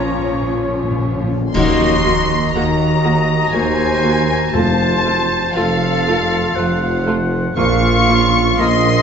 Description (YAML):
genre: classical, slow romantic movement for symphony orchestra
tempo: 59 BPM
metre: 3/4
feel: rubato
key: unclear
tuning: A4 = 440 Hz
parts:
  - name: rich studio violin section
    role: melody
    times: 0.0-9.0 s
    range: F5 to Db6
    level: -22 LUFS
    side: left 3 dB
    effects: none
  - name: clear oboe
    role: second line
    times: 0.0-9.0 s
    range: Db5 to Bb5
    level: -24 LUFS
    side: equal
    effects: none
  - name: silver concert flute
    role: second line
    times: 0.0-9.0 s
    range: A4 to Db6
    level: -23 LUFS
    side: left 2 dB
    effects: none
  - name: warm clarinet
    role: second line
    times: 0.0-9.0 s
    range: F4 to Gb4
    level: -24 LUFS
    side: right 2 dB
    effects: none
  - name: warm studio violin section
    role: second line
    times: 0.0-9.0 s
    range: F4 to Db6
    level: -25 LUFS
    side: left 4 dB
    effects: none
  - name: warm studio viola section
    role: accompaniment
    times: 0.0-8.7 s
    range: F3 to Gb4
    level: -25 LUFS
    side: right 2 dB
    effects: none
  - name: mellow French horn section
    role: sustained chords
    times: 0.0-8.0 s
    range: F3 to F4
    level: -23 LUFS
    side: left 4 dB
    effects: none
  - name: concert harp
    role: arpeggios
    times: 0.0-9.0 s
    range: Bb2 to A5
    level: -25 LUFS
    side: left 8 dB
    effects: none
  - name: rich studio double bass section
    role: bass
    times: 0.0-9.0 s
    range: F1 to Eb2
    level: -24 LUFS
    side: right 3 dB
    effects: none
  - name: warm studio cello section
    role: bass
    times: 0.0-9.0 s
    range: Eb2 to Bb2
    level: -23 LUFS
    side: right 3 dB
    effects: none
  - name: timpani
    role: percussion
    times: 0.0-9.0 s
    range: F2 to Bb2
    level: -27 LUFS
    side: equal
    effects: none
  - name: warm tuba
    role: bass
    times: 1.5-9.0 s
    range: F1 to Eb2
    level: -22 LUFS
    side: right 4 dB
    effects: none
  - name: clash cymbals and concert bass drum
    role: percussion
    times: 1.5-3.5 s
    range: none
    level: -25 LUFS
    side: equal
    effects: none
  - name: clear trombone section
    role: sustained chords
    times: 1.6-8.0 s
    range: Bb2 to Gb3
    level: -26 LUFS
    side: right 3 dB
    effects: none
room: wet scoring stage reverb, RT60 1.6 s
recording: nothing above 7.7 kHz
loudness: -13 LUFS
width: side -7 dB against mid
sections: 0.0-1.5 A section; 1.5-9.0 B section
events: timpani fill 0.0-1.5; band accent 1.5-2.5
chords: 0.0 Bbm; 1.5 Ebm; 4.5 F; 7.6 Bbm